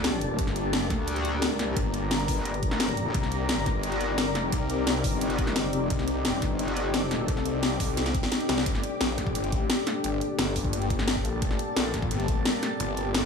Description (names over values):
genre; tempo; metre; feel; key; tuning
dark technical drum and bass; 174 BPM; 4/4; straight; G minor; A4 = 440 Hz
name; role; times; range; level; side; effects
dark analog pad; sustained chords; 0.0-13.3 s; G3 to Bb4; -32 LUFS; left 2 dB; chorus, sidechain pumping
metallic wobble bass; bass; 0.0-7.3 s; G1 to D2; -31 LUFS; equal; distortion, chorus, tube saturation
drum and bass drum kit; drums; 0.0-13.2 s; hi-hat, snare drum; -29 LUFS; left 1 dB; overdrive
granular cloud pad; texture; 0.0-13.3 s; C4 to Bb5; -32 LUFS; left 2 dB; built-in reverb, sidechain pumping
snarling distorted saw bass; bass; 0.4-13.3 s; G1 to C2; -31 LUFS; left 1 dB; distortion, tube saturation, sidechain pumping
electronic kick drum; drums; 0.4-12.4 s; none; -30 LUFS; equal; none
room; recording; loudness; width
light reverb; studio ambience; -24 LUFS; side -6 dB against mid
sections
0.0-8.7 A section; 8.7-13.3 A section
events
drop 0.0-8.7, 8.7-13.3; drum fill 8.0-8.7; band accent 8.6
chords
0.0 Gmadd9; 3.1 Cm7; 8.7 Gmadd9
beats
0.04 | 0.39 0.73 1.08 1.42 | 1.77 2.11 2.46 2.80 | 3.15 3.49 3.83 4.18 | 4.52 4.87 5.21 5.56 | 5.90 6.25 6.59 6.94 | 7.28 7.63 7.97 8.32 | 8.66 9.01 9.35 9.70 | 10.04 10.39 10.73 11.08 | 11.42 11.77 12.11 12.46 | 12.80 13.14